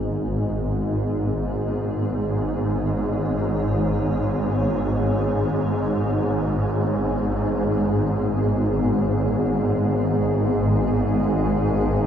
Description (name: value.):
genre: dark ambient drone.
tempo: free time.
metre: none.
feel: none.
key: G# minor.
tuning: A4 = 439 Hz.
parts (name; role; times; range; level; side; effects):
granular cloud pad; sustained chords; 0.0-12.1 s; G#2 to D#5; -26 LUFS; equal; built-in reverb.
swarming drone; drone; 0.0-12.1 s; G#1 to G#2; -21 LUFS; equal; built-in reverb.
room: wet cathedral reverb, RT60 5.3 s.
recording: dark, warm production.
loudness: -20 LUFS.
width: side -8 dB against mid.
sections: 0.0-12.1 A section.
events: fade-in on ambient pad 0.0-12.1.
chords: 0.0 G#m.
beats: free time.